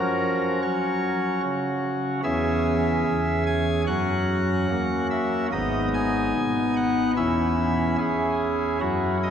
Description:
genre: classical, chorale-style piece for pipe organ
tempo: 74 BPM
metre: 4/4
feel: rubato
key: unclear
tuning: A4 = 440 Hz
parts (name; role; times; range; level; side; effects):
- pipe organ, cornet; solo; 0.0-9.3 s; G#1 to G#5; -22 LUFS; equal; none
room: wet cathedral reverb, RT60 5.2 s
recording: recorded in a church or concert hall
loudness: -22 LUFS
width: side -8 dB against mid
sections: 0.0-9.3 A section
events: none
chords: 0.0 F#; 2.2 C#m/E; 3.9 F#; 5.5 G#m; 7.2 C#m/E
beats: 0.62 1.43 | 2.24 3.06 3.88 4.70 | 5.52 6.35 7.17 7.98 | 8.81

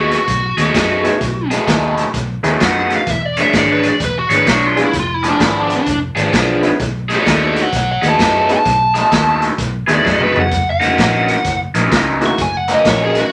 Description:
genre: electric blues shuffle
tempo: 129 BPM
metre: 4/4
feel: swing 64% on 8ths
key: B mixolydian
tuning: A4 = 439 Hz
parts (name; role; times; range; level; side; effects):
- biting lead guitar; melody; 0.0-13.3 s; D4 to C#6; -19 LUFS; equal; overdrive
- raw garage guitar; riff; 0.0-13.2 s; F#2 to C#5; -18 LUFS; equal; overdrive, phaser
- vintage muted fingered electric bass; bass; 0.0-13.2 s; E1 to F#2; -25 LUFS; equal; none
- raw garage drum kit; drums; 0.1-13.2 s; hi-hat, kick drum, snare drum, toms; -22 LUFS; equal; none
- bright upright piano; accompaniment; 1.0-12.4 s; G#3 to G#4; -23 LUFS; equal; none
room: moderate studio ambience, RT60 0.5 s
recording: none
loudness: -15 LUFS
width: mono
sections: 0.0-13.3 A section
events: lead electric guitar solo 0.0-13.3; drum fill 10.1-10.5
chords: 0.0 B13; 3.1 E6; 4.9 Fdim7; 6.8 B13; 10.5 F#13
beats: 0.27 0.74 | 1.21 1.67 2.14 2.60 | 3.07 3.53 4.00 4.46 | 4.93 5.40 5.86 6.33 | 6.79 7.26 7.72 8.19 | 8.65 9.12 9.59 10.05 | 10.52 10.98 11.45 11.92 | 12.38 12.85 13.31

